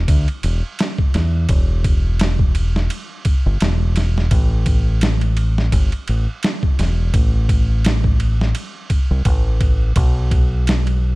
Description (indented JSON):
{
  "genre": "trip hop",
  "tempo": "85 BPM",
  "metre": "4/4",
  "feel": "swing 56% on 16ths",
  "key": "unclear",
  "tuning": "A4 = 440 Hz",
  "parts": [
    { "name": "deep dub fingered electric bass", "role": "bass", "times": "0.0-11.2 s", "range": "E1 to E2", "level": "-17 LUFS", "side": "equal", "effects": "none" },
    { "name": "boom bap sampler-style drum kit", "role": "drums", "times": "0.1-11.0 s", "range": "kick drum, ride cymbal, snare drum", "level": "-18 LUFS", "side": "equal", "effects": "none" }
  ],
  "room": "digital ambience",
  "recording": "dark, warm production",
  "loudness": "-15 LUFS",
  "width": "side -22 dB against mid",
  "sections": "0.0-11.2 A section",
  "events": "none",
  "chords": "none"
}